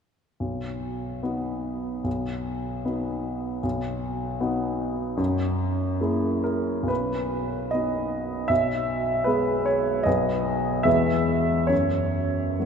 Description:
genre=classical, romantic character piece for solo piano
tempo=66-79 BPM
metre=2/4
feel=rubato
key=B major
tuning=A4 = 440 Hz
part: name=warm baby grand piano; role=solo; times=0.4-12.7 s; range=B1 to E5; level=-23 LUFS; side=equal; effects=none
room=wet cathedral reverb, RT60 5.3 s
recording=in a vast, echoing space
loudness=-23 LUFS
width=side -6 dB against mid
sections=0.4-6.9 A section; 6.9-12.7 B section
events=none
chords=0.4 B; 5.2 F#9; 6.9 B; 8.5 E/B; 10.1 B; 10.9 E; 11.7 F#5

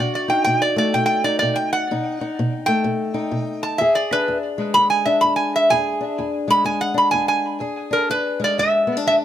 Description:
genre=acoustic country blues, solo or duo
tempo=126 BPM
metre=4/4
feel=swing 61% on 8ths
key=E mixolydian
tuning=A4 = 438 Hz
part: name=metal-body resonator slide guitar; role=melody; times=0.0-9.1 s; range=A#4 to B5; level=-18 LUFS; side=right 1 dB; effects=tape echo
part: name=fingerpicked old ladder-braced acoustic guitar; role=accompaniment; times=0.0-9.2 s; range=E2 to G#4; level=-23 LUFS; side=left 2 dB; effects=none
room=light reverb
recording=none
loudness=-17 LUFS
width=side -10 dB against mid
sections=0.0-7.6 A section; 7.6-9.2 B section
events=resonator guitar played with a steel bar solo 0.0-7.6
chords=0.0 B7; 3.8 E7

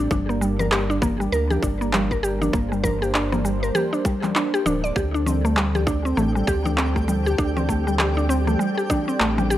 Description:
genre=organic downtempo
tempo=99 BPM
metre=4/4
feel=swing 60% on 16ths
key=G minor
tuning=A4 = 441 Hz
part: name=warm analog pad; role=sustained chords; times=0.0-9.6 s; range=G3 to D5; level=-29 LUFS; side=equal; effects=chorus, sidechain pumping
part: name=mallet-like synth pluck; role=arpeggios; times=0.0-9.6 s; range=G3 to D5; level=-23 LUFS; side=equal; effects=chorus, analog delay
part: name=round analog bass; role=bass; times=0.0-9.6 s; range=D1 to D2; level=-25 LUFS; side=equal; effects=sidechain pumping
part: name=electronic shaker, congas and handclaps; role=drums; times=0.0-9.6 s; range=none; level=-26 LUFS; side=left 2 dB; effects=overdrive, studio reverb
part: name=electronic kick drum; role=drums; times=0.1-9.0 s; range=none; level=-25 LUFS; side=equal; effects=overdrive, studio reverb
part: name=twinkling granular texture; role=texture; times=5.3-9.6 s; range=G4 to G5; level=-32 LUFS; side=left 1 dB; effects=built-in reverb
room=light reverb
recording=dry, gritty hardware recording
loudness=-19 LUFS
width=side -13 dB against mid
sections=0.0-9.6 A section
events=none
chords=0.1 Gm; 5.0 D7sus4

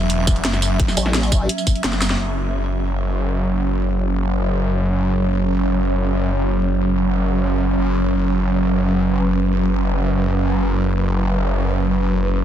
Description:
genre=dark technical drum and bass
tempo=free time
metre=none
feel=none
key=unclear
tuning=A4 = 440 Hz
part: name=swarming drone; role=sustained chords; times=0.0-12.4 s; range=F#3 to E5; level=-21 LUFS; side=right 2 dB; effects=built-in reverb, sidechain pumping
part: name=snarling distorted saw bass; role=bass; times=0.0-12.4 s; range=E1 to F#1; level=-20 LUFS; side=equal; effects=distortion, tube saturation, sidechain pumping
part: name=drum and bass drum kit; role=drums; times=0.1-2.2 s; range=hi-hat, snare drum, tambourine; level=-23 LUFS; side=equal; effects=none
part: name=electronic kick drum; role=drums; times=0.3-1.7 s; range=none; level=-18 LUFS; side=equal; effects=none
part: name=formant-sweep wobble bass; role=bass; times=1.0-1.5 s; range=A1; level=-20 LUFS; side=equal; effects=chorus
room=moderate plate reverb, RT60 2.4 s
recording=dense, heavily limited modern master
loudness=-17 LUFS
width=side -10 dB against mid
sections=0.0-2.2 A section; 2.2-12.4 B section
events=drop 0.0-2.2; drum fill 1.9; band accent 2.1; filter sweep on synth drone 2.2-12.4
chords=0.0 F#5

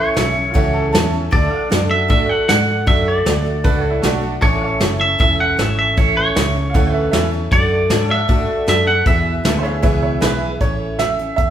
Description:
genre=honky-tonk and classic country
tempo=155 BPM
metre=4/4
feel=straight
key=A major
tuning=A4 = 443 Hz
part: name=twangy electric guitar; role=melody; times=0.0-10.2 s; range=C#5 to F#5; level=-19 LUFS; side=right 1 dB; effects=none
part: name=picked steel-string acoustic guitar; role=accompaniment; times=0.0-11.5 s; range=E2 to F#4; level=-22 LUFS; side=equal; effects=none
part: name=tack piano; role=accompaniment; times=0.0-10.5 s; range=C#4 to E5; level=-26 LUFS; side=right 4 dB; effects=none
part: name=pedal steel guitar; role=sustained chords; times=0.0-10.6 s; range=G#4 to F#5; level=-28 LUFS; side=left 1 dB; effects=none
part: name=vintage muted fingered electric bass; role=bass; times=0.2-11.5 s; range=E1 to A2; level=-21 LUFS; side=equal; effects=none
part: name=soft brush drum kit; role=drums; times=0.2-11.5 s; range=hi-hat, kick drum, snare drum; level=-19 LUFS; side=equal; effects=none
part: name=bright upright piano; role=second line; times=0.5-1.1, 3.6-4.3, 6.7-11.5 s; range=A3 to F#5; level=-23 LUFS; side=right 4 dB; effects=none
room=wet large studio reverb, RT60 1.1 s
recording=band playing live in one room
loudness=-14 LUFS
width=side -10 dB against mid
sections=0.0-10.6 A section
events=none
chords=0.0 A; 1.3 D; 4.4 A; 7.5 D; 9.1 E; 10.6 A

